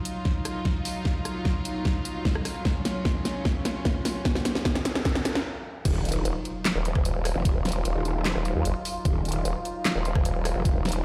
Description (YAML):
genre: heavy wobble dubstep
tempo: 150 BPM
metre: 4/4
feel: half-time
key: Eb minor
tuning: A4 = 441 Hz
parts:
  - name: warm studio string section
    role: sustained chords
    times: 0.0-11.0 s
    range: Gb3 to F4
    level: -36 LUFS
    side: equal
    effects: sidechain pumping, low-pass filter
  - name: riser, noise sweep and sub drop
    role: sound effects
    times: 1.4-7.5 s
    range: none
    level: -41 LUFS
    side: equal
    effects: none
  - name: dubstep drum kit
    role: drums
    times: 0.1-11.0 s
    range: crash cymbal, handclaps, hi-hat, rim click, snare drum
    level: -31 LUFS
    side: equal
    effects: none
  - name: electronic kick drum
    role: drums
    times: 0.3-10.7 s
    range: none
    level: -28 LUFS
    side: equal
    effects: none
  - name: growl bass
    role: bass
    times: 5.9-10.7 s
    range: Eb1 to F1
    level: -30 LUFS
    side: equal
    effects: chorus, overdrive
  - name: vowel-sweep wobble bass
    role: bass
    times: 6.3-11.0 s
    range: Eb1 to Eb2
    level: -29 LUFS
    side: equal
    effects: chorus, overdrive
room: light reverb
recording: played on a big sound system in a bare room, large studio reverb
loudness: -27 LUFS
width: mono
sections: 0.0-5.9 A section; 5.9-11.0 B section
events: build-up 0.0-5.9; drum fill 0.0-5.5; riser 1.4-5.5; noise sweep 4.3-5.9; stop 5.5-5.9; drop 5.9-11.0; impact 5.9-7.5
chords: 0.0 Ebmadd9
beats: 0.25 0.65 | 1.05 1.45 1.85 2.25 | 2.65 3.05 3.45 3.85 | 4.25 4.65 5.05 5.45 | 5.85 6.25 6.65 7.05 | 7.45 7.85 8.25 8.65 | 9.05 9.45 9.85 10.25 | 10.65